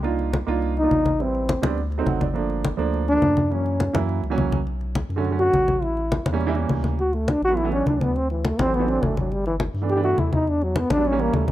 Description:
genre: Afro-Cuban jazz.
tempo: 207 BPM.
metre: 4/4.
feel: straight.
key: B minor from 4.7 s.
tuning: A4 = 441 Hz.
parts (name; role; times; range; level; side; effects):
dark grand piano; accompaniment; 0.0-11.5 s; D3 to F#5; -26 LUFS; right 6 dB; none.
warm sub bass; bass; 0.0-11.5 s; G1 to G2; -26 LUFS; equal; none.
congas; percussion; 0.0-11.5 s; none; -25 LUFS; left 2 dB; none.
breathy trombone; melody; 0.8-11.5 s; E3 to G4; -22 LUFS; left 1 dB; none.
room: small room ambience.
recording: dry, close 1970s-style studio recording.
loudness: -20 LUFS.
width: side -14 dB against mid.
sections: 0.0-4.7 A section; 4.7-11.5 A section.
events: trombone solo 0.0-11.5; grand piano fill 1.9-2.4.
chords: 0.0 Cm11; 1.2 Am7; 1.8 D7b9; 2.4 Gm9; 3.5 F#7; 4.7 Bm9; 5.8 A7b9; 7.0 D69; 8.1 D9; 9.3 G69; 10.5 Em9.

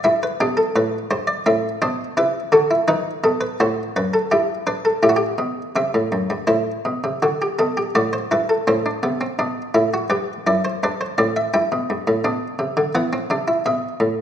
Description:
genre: classical, baroque-style 3-part fugue for harpsichord.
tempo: 84 BPM.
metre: 4/4.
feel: straight.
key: unclear.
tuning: A4 = 445 Hz.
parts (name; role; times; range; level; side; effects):
buff-stop harpsichord; solo; 0.0-14.2 s; F#2 to G5; -18 LUFS; equal; none.
room: moderate scoring stage reverb, RT60 1.7 s.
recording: minimal, uncompressed stereo recording.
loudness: -18 LUFS.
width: side -9 dB against mid.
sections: 0.0-5.8 A section; 5.8-14.2 B section.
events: none.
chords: 0.0 Em/G; 1.5 F#m7b5/A; 2.9 B7; 4.3 Em/G; 5.8 C; 7.2 Bm; 8.7 Am; 10.1 G; 13.0 E5.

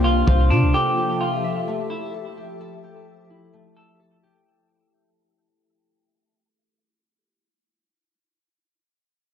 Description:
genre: hip hop.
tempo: 129 BPM.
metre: 4/4.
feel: half-time.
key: F major.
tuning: A4 = 439 Hz.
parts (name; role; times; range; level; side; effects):
semi-hollow electric guitar; melody; 0.0-4.0 s; D4 to A4; -23 LUFS; equal; spring reverb, tape echo.
glassy FM pad; sustained chords; 0.0-4.4 s; C3 to E5; -27 LUFS; left 2 dB; ensemble chorus, built-in reverb, sidechain pumping.
concert harp; arpeggios; 0.0-6.9 s; A3 to E5; -30 LUFS; equal; tape echo.
soft 808-style bass; bass; 0.0-0.7 s; C2 to C3; -18 LUFS; equal; none.
downlifter; sound effects; 0.1-0.7 s; none; -47 LUFS; left 1 dB; none.
room: little or no reverb.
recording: dark, warm production.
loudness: -18 LUFS.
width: side -9 dB against mid.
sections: 0.0-4.5 A section.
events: fade-out 0.0-4.5.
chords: 0.0 C9sus4; 0.7 Fmaj9.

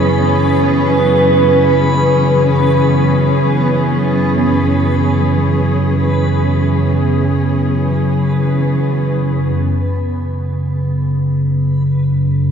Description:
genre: ambient.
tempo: free time.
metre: none.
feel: none.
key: unclear.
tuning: A4 = 440 Hz.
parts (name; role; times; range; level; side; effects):
dark chamber cello section; sustained chords; 0.0-9.6 s; F#2 to G#4; -17 LUFS; left 1 dB; shimmer reverb.
deep rumbling drone; drone; 0.0-12.5 s; F#2 to C#3; -15 LUFS; equal; built-in reverb.
backwards swelling texture; texture; 0.0-9.6 s; B3 to B4; -18 LUFS; right 1 dB; built-in reverb, shimmer reverb.
room: wet cathedral reverb, RT60 5.3 s.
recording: none.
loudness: -12 LUFS.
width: side -7 dB against mid.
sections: 0.0-9.6 A section; 9.6-12.5 B section.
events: none.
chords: 0.0 E6/F#; 9.6 F#5.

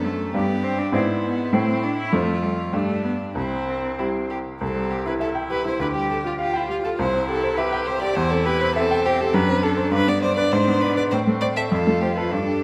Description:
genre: quick classical-period movement for piano trio.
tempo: 101 BPM.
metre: 2/4.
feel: rubato.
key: C major.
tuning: A4 = 440 Hz.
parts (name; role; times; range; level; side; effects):
rich violin; melody; 0.0-12.6 s; D4 to E5; -28 LUFS; equal; none.
rich cello; second line; 0.0-12.6 s; G3 to G4; -29 LUFS; equal; none.
clear baby grand piano; accompaniment; 0.0-12.6 s; C2 to G5; -25 LUFS; equal; none.
room: wet scoring stage reverb, RT60 1.6 s.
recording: none.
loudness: -22 LUFS.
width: mono.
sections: 0.0-4.6 A section; 4.6-12.6 B section.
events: none.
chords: 0.3 G; 0.9 E7/G#; 1.5 Am; 2.1 F; 2.7 G5; 3.4 C; 5.8 G5/D; 7.0 C; 8.2 C/E; 9.3 D7/F#; 9.9 G; 10.5 G#dim; 11.1 Am; 11.7 F.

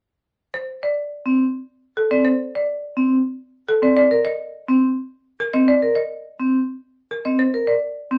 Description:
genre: classical, minimalist pattern music.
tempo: 105 BPM.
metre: 3/4.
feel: straight.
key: unclear.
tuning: A4 = 440 Hz.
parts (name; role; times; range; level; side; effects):
folk marimba with hard mallets; melody; 0.5-7.9 s; A4 to Eb5; -23 LUFS; equal; none.
vibraphone with medium hard mallets; arpeggios; 1.3-8.2 s; C4 to Bb4; -20 LUFS; equal; none.
room: moderate studio reverb, RT60 0.6 s.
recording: none.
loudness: -20 LUFS.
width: mono.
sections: 0.5-8.2 A section.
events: none.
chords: 0.5 N.C.; 4.0 Cm7.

